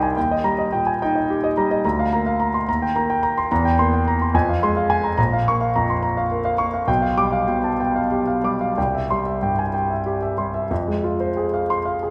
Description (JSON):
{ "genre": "classical, romantic character piece for solo piano", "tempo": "60-74 BPM (dotted quarters)", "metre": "6/8", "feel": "rubato", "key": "F minor from 3.5 s", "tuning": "A4 = 440 Hz", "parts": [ { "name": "warm concert grand piano", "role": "solo", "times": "0.0-12.1 s", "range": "Bb1 to D6", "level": "-21 LUFS", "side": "equal", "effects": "none" } ], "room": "moderate concert hall reverb, RT60 2.0 s", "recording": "none", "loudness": "-21 LUFS", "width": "mono", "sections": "0.0-10.7 A section; 10.7-12.1 B section", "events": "none", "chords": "0.2 Eb; 1.8 Bb/D; 2.7 Eb; 3.5 C7/E; 4.3 Fm; 5.2 Bbm; 6.9 G7/B; 8.8 C; 10.7 Fm", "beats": "| 0.17 1.00 | 1.84 2.68 | 3.51 4.34 | 5.18 6.03 | 6.88 7.79 | 8.77 9.74 | 10.71 11.69" }